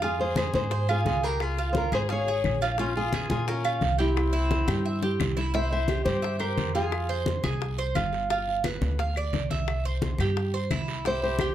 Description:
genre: latin, Cuban son and guajira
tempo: 174 BPM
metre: 4/4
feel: straight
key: unclear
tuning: A4 = 438 Hz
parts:
  - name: nylon-string guitar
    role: melody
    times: 0.0-7.2, 11.1-11.5 s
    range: E4 to E5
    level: -29 LUFS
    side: left 1 dB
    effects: none
  - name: clear trumpet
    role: second line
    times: 0.0-7.2, 11.1-11.5 s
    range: C4 to C5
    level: -35 LUFS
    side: left 6 dB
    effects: none
  - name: Cuban tres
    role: arpeggios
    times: 0.0-11.5 s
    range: E4 to F5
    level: -30 LUFS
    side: right 5 dB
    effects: none
  - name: upright bass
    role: bass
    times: 0.0-11.5 s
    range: G1 to Bb2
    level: -29 LUFS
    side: equal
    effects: none
  - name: bongos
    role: percussion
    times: 0.0-11.5 s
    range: none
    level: -37 LUFS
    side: left 8 dB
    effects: none
  - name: congas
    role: percussion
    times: 0.0-11.5 s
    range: none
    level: -32 LUFS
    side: left 2 dB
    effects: none
  - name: guiro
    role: percussion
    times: 0.0-11.5 s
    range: none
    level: -42 LUFS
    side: right 7 dB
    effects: none
  - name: claves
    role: percussion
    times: 0.4-11.5 s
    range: none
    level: -41 LUFS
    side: left 4 dB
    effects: none
room: moderate large studio reverb, RT60 0.9 s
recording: dark, warm production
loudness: -24 LUFS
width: side -11 dB against mid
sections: 0.0-5.5 A section; 5.5-11.5 B section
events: drum fill 4.5-5.5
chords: 0.0 Fm; 1.4 Db; 2.8 Bbm7; 4.2 C; 6.9 Fmadd9; 8.3 G7; 9.7 C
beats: | 0.03 0.37 0.72 1.06 | 1.41 1.75 2.10 2.44 | 2.79 3.13 3.48 3.82 | 4.16 4.51 4.85 5.20 | 5.54 5.89 6.23 6.58 | 6.92 7.26 7.61 7.95 | 8.30 8.64 8.98 9.33 | 9.67 10.02 10.36 10.71 | 11.05 11.40

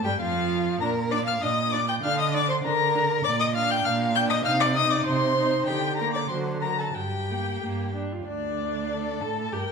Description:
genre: quick classical-period movement for string quartet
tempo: 97 BPM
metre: 2/4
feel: rubato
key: Bb major, G minor from 3.2 s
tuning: A4 = 441 Hz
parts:
  - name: warm violin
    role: melody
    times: 0.0-9.7 s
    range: D5 to G6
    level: -27 LUFS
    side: left 6 dB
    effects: none
  - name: rich violin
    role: second line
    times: 0.0-9.7 s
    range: F4 to G5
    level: -28 LUFS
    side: equal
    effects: none
  - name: warm cello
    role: bass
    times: 0.0-9.6 s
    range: D2 to D3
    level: -29 LUFS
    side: right 4 dB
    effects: none
  - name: rich viola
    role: accompaniment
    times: 0.1-9.6 s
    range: F3 to A4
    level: -31 LUFS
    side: right 2 dB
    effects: none
room: wet recital hall reverb, RT60 1.5 s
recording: minimal, uncompressed stereo recording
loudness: -23 LUFS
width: side -5 dB against mid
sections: 0.0-8.3 A section; 8.3-9.7 B section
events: none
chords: 0.0 N.C.; 0.8 Bb; 2.0 Bb/D; 3.2 Bb; 4.5 Cm; 5.7 Gm/D; 6.3 D7; 7.0 Gm; 8.3 N.C.; 8.9 D5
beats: 0.20 | 0.81 1.42 | 2.04 2.64 | 3.25 3.85 | 4.45 5.06 | 5.67 6.30 | 6.96 7.62 | 8.28 8.90 | 9.53

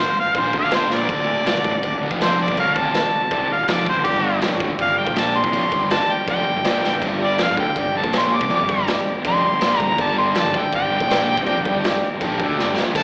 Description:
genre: garage rock duo or trio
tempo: 162 BPM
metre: 4/4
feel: straight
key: unclear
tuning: A4 = 440 Hz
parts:
  - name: warm harmonica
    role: melody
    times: 0.0-13.0 s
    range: G4 to D6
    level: -20 LUFS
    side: equal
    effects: overdrive
  - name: thick fuzz guitar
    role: riff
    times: 0.0-13.0 s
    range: D2 to F3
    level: -26 LUFS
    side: equal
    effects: distortion, slapback echo
  - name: fuzz picked electric bass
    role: bass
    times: 0.0-13.0 s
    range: D1 to F2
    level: -25 LUFS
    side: equal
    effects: overdrive
  - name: raw garage drum kit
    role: drums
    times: 0.3-13.0 s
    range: crash cymbal, kick drum, snare drum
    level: -23 LUFS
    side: equal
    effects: none
  - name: combo organ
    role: sustained chords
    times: 1.1-12.9 s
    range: D4 to E5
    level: -26 LUFS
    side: equal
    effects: spring reverb
room: light reverb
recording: live gig heard through the venue's PA, recital hall reverb, small speaker sound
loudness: -17 LUFS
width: side -37 dB against mid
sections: 0.0-13.0 A section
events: harmonica solo 0.0-13.0; drum fill 0.9, 6.8, 12.6-13.0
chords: 0.0 G5; 1.1 D; 4.1 G5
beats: 0.35 0.72 | 1.09 1.46 1.83 2.20 | 2.57 2.94 3.31 3.68 | 4.05 4.42 4.79 5.16 | 5.53 5.90 6.27 6.64 | 7.02 7.39 7.76 8.13 | 8.50 8.87 9.24 9.61 | 9.98 10.36 10.73 11.10 | 11.47 11.84 12.21 12.58 | 12.96

